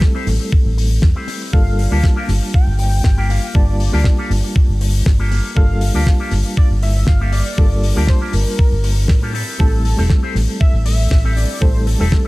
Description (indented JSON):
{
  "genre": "nu-disco, nu disco",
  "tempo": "119 BPM",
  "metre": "4/4",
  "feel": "straight",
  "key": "G dorian",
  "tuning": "A4 = 440 Hz",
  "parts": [
    { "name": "mellow reed electric piano", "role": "accompaniment", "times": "0.0-12.3 s", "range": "G3 to A5", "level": "-25 LUFS", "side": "equal", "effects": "fast tremolo, sidechain pumping, analog delay" },
    { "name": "electric guitar with an envelope filter", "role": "riff", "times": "0.0-12.3 s", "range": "Bb3 to C5", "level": "-27 LUFS", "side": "left 2 dB", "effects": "wide subtle chorus, analog delay" },
    { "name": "damped 70s drum kit", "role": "drums", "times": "0.0-12.2 s", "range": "hi-hat, snare drum", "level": "-26 LUFS", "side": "left 2 dB", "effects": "analog delay" },
    { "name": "electronic kick drum", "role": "drums", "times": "0.0-12.2 s", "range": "none", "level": "-13 LUFS", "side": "equal", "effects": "none" },
    { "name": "fingered electric bass with an envelope filter", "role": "bass", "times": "0.3-12.1 s", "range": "E1 to A2", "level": "-16 LUFS", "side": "equal", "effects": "none" },
    { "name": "wide unison lead", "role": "melody", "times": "1.5-12.3 s", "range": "A4 to G5", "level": "-28 LUFS", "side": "equal", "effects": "cassette tape, dub echo" }
  ],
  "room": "small room ambience",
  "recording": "echo-heavy mix",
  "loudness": "-13 LUFS",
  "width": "side -21 dB against mid",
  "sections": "0.0-12.3 A section",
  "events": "none",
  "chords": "0.0 Am7; 1.5 Gm9; 9.3 Am7"
}